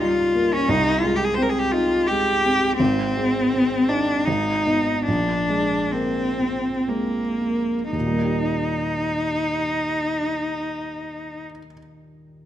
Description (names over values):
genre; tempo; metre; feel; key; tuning
classical, romantic duo for cello and grand piano; 55-88 BPM; 3/4; rubato; Eb major; A4 = 440 Hz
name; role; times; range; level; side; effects
rich cello; melody; 0.0-11.4 s; Bb3 to C5; -21 LUFS; left 1 dB; none
warm grand piano; accompaniment; 0.0-12.5 s; Ab1 to G4; -25 LUFS; right 1 dB; none
room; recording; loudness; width
moderate scoring stage reverb, RT60 2.0 s; none; -19 LUFS; side -11 dB against mid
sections
0.0-7.9 A section; 7.9-12.5 B section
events
slowing down 1.7-7.9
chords
0.0 Eb7/Db; 0.7 Ab/C; 2.8 Ab; 4.3 Abm; 5.1 Bb9; 7.9 Eb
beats
0.01 | 0.69 1.39 2.09 | 2.80 3.52 4.27 | 5.07 5.93 6.88 | 7.94 8.98 10.02 | 11.07 12.11